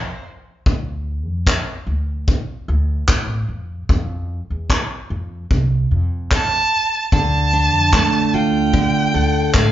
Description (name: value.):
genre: acoustic pop.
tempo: 74 BPM.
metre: 4/4.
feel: straight.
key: unclear.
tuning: A4 = 438 Hz.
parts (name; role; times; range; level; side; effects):
bright violin; melody; 0.0-0.2, 6.3-9.7 s; C5 to A5; -18 LUFS; right 2 dB; none.
upright bass; bass; 0.0-9.7 s; C2 to A2; -21 LUFS; equal; none.
soft brush drum kit; drums; 0.7-9.7 s; handclaps, kick drum; -18 LUFS; equal; none.
picked steel-string acoustic guitar; accompaniment; 7.1-9.7 s; D3 to A4; -18 LUFS; right 1 dB; none.
room: moderate large studio reverb, RT60 1.1 s.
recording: band playing live in one room, nothing above 7.5 kHz.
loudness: -16 LUFS.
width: side -12 dB against mid.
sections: 0.0-9.7 A section.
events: none.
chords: 0.0 F5; 0.7 N.C.; 3.5 F; 7.1 Dm.